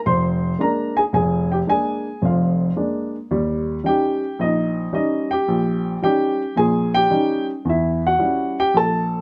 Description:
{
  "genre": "solo jazz",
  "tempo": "110 BPM",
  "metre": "4/4",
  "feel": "swing 68% on 8ths",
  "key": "unclear",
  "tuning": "A4 = 440 Hz",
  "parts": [
    { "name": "dark baby grand piano", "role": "solo", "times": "0.1-9.2 s", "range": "F1 to C6", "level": "-20 LUFS", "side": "equal", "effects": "none" }
  ],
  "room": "light reverb",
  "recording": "close, detailed microphones",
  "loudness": "-20 LUFS",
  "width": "mono",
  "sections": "0.0-9.2 A section",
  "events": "none",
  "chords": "0.0 Bb7; 3.3 Eb7; 7.7 Edim7",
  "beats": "0.05 0.59 | 1.13 1.68 2.22 2.76 | 3.31 3.85 4.39 4.93 | 5.48 6.02 6.56 7.11 | 7.65 8.19 8.74"
}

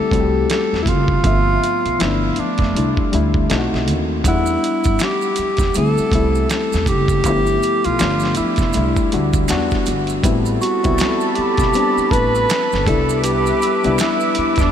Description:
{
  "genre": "R&B, neo-soul",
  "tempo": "80 BPM",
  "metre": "4/4",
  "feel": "swing 60% on 16ths",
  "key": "unclear",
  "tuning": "A4 = 439 Hz",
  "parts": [
    { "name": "breathy tenor saxophone", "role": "melody", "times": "0.0-14.7 s", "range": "D4 to B4", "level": "-20 LUFS", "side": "right 1 dB", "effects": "ping-pong delay" },
    { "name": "bright reed electric piano", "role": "accompaniment", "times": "0.0-14.7 s", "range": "F3 to F#5", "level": "-21 LUFS", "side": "left 4 dB", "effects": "spring reverb" },
    { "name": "upright bass", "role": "bass", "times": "0.1-14.7 s", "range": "F1 to G2", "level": "-21 LUFS", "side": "right 1 dB", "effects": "none" },
    { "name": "dusty soul sampler-style drum kit", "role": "drums", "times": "0.1-14.7 s", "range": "hi-hat, kick drum, snare drum", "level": "-22 LUFS", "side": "right 1 dB", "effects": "none" },
    { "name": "maracas and finger snaps", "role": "percussion", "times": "4.3-14.7 s", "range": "none", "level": "-33 LUFS", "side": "right 8 dB", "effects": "none" },
    { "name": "lush unison pad", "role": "sustained chords", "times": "10.2-14.7 s", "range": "A4 to D6", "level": "-23 LUFS", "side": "right 2 dB", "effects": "chorus" }
  ],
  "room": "moderate huge ambient reverb, RT60 8.3 s",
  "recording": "dreamy mix soaked in reverb",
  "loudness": "-15 LUFS",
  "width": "side -9 dB against mid",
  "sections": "0.0-10.2 A section; 10.2-14.7 B section",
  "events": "none",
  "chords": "0.0 D9sus4 (rootless); 1.2 G13; 2.0 G9; 2.7 C69; 3.5 B7b9; 4.2 Em9; 5.7 D9sus4 (rootless); 7.2 G13; 8.0 G9; 8.7 C69; 9.5 Em7; 10.2 Am9; 12.9 Cmaj9",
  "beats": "0.49 | 1.24 1.99 2.74 3.49 | 4.24 4.99 5.74 6.49 | 7.24 7.99 8.74 9.49 | 10.24 10.99 11.74 12.49 | 13.24 13.99"
}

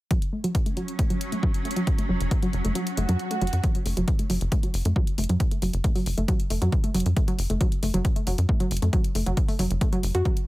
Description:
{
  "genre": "driving peak-time techno",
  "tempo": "136 BPM",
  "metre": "4/4",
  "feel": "straight",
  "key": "F# minor",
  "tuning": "A4 = 438 Hz",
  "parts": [
    { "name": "warbly dusty pluck", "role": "riff", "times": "0.1-10.3 s", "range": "F#3 to F#4", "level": "-29 LUFS", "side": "right 1 dB", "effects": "chorus, tube saturation, sidechain pumping, digital delay" },
    { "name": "swarming drone", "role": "drone", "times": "0.7-3.7 s", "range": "F#3 to C#4", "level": "-34 LUFS", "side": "equal", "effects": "built-in reverb, sidechain pumping" },
    { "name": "electronic hi-hat", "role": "drums", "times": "0.1-10.5 s", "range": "none", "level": "-36 LUFS", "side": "left 2 dB", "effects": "overdrive" },
    { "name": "electronic kick drum", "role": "drums", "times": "0.1-10.3 s", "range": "none", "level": "-24 LUFS", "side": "equal", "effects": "none" },
    { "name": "tight sequencer bass", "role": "bass", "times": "2.1-10.2 s", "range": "F#1 to F#2", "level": "-24 LUFS", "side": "equal", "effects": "sidechain pumping" },
    { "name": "swell", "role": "sound effects", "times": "2.9-3.6 s", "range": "none", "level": "-33 LUFS", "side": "right 4 dB", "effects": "none" }
  ],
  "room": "digital ambience",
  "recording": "none",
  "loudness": "-22 LUFS",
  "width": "side -18 dB against mid",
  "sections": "0.1-3.6 A section; 3.6-10.5 B section",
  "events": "filter sweep on synth arpeggio sound 0.1-3.6; kick drops out 2.8-3.6; swell 2.9-3.6",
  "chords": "0.1 F#m",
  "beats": "| 0.11 0.55 0.99 1.43 | 1.87 2.31 2.75 3.19 | 3.64 4.08 4.52 4.96 | 5.40 5.84 6.28 6.72 | 7.17 7.61 8.05 8.49 | 8.93 9.37 9.81 10.25"
}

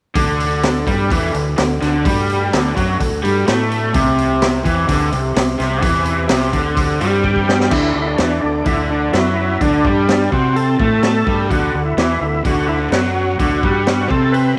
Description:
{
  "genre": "classic rock",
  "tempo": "127 BPM",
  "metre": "4/4",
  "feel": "straight",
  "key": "D mixolydian",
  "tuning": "A4 = 442 Hz",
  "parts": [
    { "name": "ensemble organ-string", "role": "sustained chords", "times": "0.2-7.7 s", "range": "A3 to D5", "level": "-30 LUFS", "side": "equal", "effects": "none" },
    { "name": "raw garage guitar", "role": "riff", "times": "0.2-14.6 s", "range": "C3 to C4", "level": "-20 LUFS", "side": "equal", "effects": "overdrive, spring reverb" },
    { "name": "fuzz fingered electric bass", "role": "bass", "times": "0.2-14.5 s", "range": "C2 to C3", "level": "-23 LUFS", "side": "equal", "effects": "overdrive" },
    { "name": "raw garage drum kit", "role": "drums", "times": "0.2-14.4 s", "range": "crash cymbal, hi-hat, kick drum, snare drum", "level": "-22 LUFS", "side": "equal", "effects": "none" },
    { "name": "tonewheel organ", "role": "melody", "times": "7.2-14.5 s", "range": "D4 to B4", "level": "-23 LUFS", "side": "equal", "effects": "slow rotary speaker, overdrive, chorus vibrato, slapback echo" }
  ],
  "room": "light reverb",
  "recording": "none",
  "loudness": "-16 LUFS",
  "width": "mono",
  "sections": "0.2-7.7 A section; 7.7-14.6 B section",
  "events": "drum fill 7.2-7.7",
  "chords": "0.2 D; 3.9 C5; 7.7 D",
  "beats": "| 0.16 0.63 1.10 1.57 | 2.05 2.52 2.99 3.46 | 3.94 4.41 4.88 5.36 | 5.83 6.30 6.77 7.25 | 7.72 8.19 8.66 9.14 | 9.61 10.08 10.55 11.03 | 11.50 11.97 12.45 12.92 | 13.39 13.86 14.34"
}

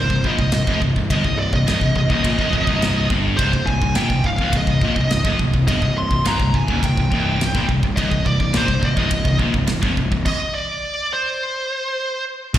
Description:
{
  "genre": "heavy metal",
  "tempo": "105 BPM",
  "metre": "4/4",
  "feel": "straight",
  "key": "C minor",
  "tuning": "A4 = 441 Hz",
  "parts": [
    { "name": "high-gain lead guitar", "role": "melody", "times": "0.0-12.2 s", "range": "C5 to C6", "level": "-23 LUFS", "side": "right 1 dB", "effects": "distortion, digital delay" },
    { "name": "scooped high-gain guitar", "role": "riff", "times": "0.0-12.6 s", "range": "C2 to Bb2", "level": "-24 LUFS", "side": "right 6 dB", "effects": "distortion, slapback echo" },
    { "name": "sludgy distorted guitar", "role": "riff", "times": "0.0-12.6 s", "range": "C2 to Bb2", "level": "-23 LUFS", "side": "left 6 dB", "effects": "overdrive" },
    { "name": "fuzz picked electric bass", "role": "bass", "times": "0.0-12.6 s", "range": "C1 to Bb1", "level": "-22 LUFS", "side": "equal", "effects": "overdrive" },
    { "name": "modern studio drum kit", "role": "drums", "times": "0.1-12.6 s", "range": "china cymbal, crash cymbal, kick drum, ride cymbal, snare drum", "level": "-22 LUFS", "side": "equal", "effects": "none" }
  ],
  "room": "little or no reverb",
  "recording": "live gig heard through the venue's PA, recital hall reverb",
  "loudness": "-16 LUFS",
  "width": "side -12 dB against mid",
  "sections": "0.0-12.6 A section",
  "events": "stop 10.3-12.6",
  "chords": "0.0 Cm",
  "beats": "0.55 | 1.12 1.69 2.26 2.83 | 3.40 3.97 4.54 5.12 | 5.69 6.26 6.83 7.41 | 7.98 8.55 9.13 9.70 | 10.27 10.85 11.42 11.99 | 12.56"
}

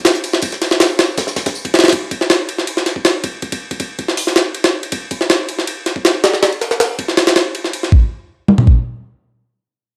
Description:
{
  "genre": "drum and bass, jungle",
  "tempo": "160 BPM",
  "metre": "4/4",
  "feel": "straight",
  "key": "none",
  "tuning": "none",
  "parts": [
    { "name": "warm soul drum kit", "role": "drums", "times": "0.0-1.9 s", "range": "hi-hat, snare drum, tambourine", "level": "-26 LUFS", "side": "equal", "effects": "high-pass filter on hats, small room reverb, high-pass filter on snare, high-pass filter on perc, high-pass filter on room" },
    { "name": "jungle sampler-style drum kit", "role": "drums", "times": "0.1-8.8 s", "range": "hi-hat, kick drum, ride cymbal, snare drum, toms", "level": "-16 LUFS", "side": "equal", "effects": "high-pass filter on cymbals, small room reverb, high-pass filter on kick, high-pass filter on snare, high-pass filter on hats, high-pass filter on toms" }
  ],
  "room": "moderate digital room reverb, RT60 1.1 s, studio reverb",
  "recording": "dark, warm production",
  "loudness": "-16 LUFS",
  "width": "mono",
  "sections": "0.0-7.9 A section; 7.9-10.0 B section",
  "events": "none",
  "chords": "none",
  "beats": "0.05 | 0.42 0.80 1.17 1.55 | 1.92 2.30 2.67 3.05 | 3.42 3.80 4.17 4.55 | 4.92 5.30 5.67 6.05 | 6.42 6.80 7.17 7.55 | 7.92 8.30 8.67"
}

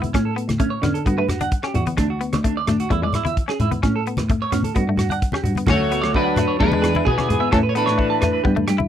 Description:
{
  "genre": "highlife guitar band",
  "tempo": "130 BPM",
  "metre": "4/4",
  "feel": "straight",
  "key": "D major",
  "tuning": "A4 = 443 Hz",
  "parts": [
    { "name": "clean electric guitar", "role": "accompaniment", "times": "0.0-8.9 s", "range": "G#3 to E4", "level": "-27 LUFS", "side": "left 9 dB", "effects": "none" },
    { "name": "dark cello", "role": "bass", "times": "0.0-8.9 s", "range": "D2 to D3", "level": "-23 LUFS", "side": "equal", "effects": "none" },
    { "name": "warm soul drum kit", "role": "drums", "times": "0.0-8.8 s", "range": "crash cymbal, hi-hat, kick drum, rim click", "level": "-24 LUFS", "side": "equal", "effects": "none" },
    { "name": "congas", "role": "percussion", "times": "0.0-8.9 s", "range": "none", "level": "-25 LUFS", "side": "left 2 dB", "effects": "none" },
    { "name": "clean electric guitar", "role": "arpeggios", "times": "0.1-8.8 s", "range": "C#4 to A5", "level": "-25 LUFS", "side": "right 8 dB", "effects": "tremolo, slapback echo" },
    { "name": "electric guitar at the edge of break-up", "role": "melody", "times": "5.7-8.7 s", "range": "B3 to C#5", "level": "-21 LUFS", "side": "equal", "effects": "analog chorus" },
    { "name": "clear alto saxophone", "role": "second line", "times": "5.7-8.6 s", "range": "E3 to A3", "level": "-27 LUFS", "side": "left 10 dB", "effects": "none" }
  ],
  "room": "little or no reverb",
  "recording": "dry, close 1970s-style studio recording",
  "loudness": "-17 LUFS",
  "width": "side -10 dB against mid",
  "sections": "0.0-5.7 A section; 5.7-8.9 B section",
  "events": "none",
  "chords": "0.1 Aadd9; 1.1 Gmaj7; 2.0 D; 2.9 E; 3.8 Aadd9; 4.8 Gmaj7; 5.7 Dmaj7; 6.6 E7; 7.5 Aadd9",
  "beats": "| 0.14 0.60 1.06 1.53 | 1.99 2.45 2.91 3.37 | 3.84 4.30 4.76 5.22 | 5.68 6.14 6.61 7.07 | 7.53 7.99 8.45"
}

